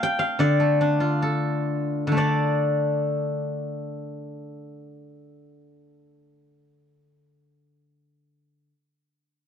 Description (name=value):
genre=chinese traditional, Chinese solo plucked strings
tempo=56-86 BPM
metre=2/4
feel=rubato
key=D yu mode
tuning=A4 = 440 Hz
part: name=steel-string zither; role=solo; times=0.0-8.7 s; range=D3 to A5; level=-22 LUFS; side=left 1 dB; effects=none
room=light reverb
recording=dry, close 1970s-style studio recording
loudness=-21 LUFS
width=side -8 dB against mid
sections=0.0-2.2 A section; 2.2-6.2 B section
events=slowing down 0.0-2.2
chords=none